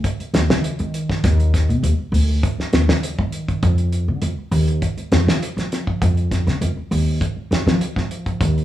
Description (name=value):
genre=afrobeat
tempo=100 BPM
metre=4/4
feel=straight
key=unclear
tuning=A4 = 441 Hz
part: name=damped 70s drum kit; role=drums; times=0.0-8.6 s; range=hi-hat, kick drum, snare drum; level=-21 LUFS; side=equal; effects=none
part: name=upright bass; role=bass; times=0.2-8.6 s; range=D2 to F3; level=-19 LUFS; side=equal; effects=none
room=moderate large studio reverb, RT60 1.0 s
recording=band playing live in one room, small room ambience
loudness=-17 LUFS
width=side -13 dB against mid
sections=0.0-8.6 A section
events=none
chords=none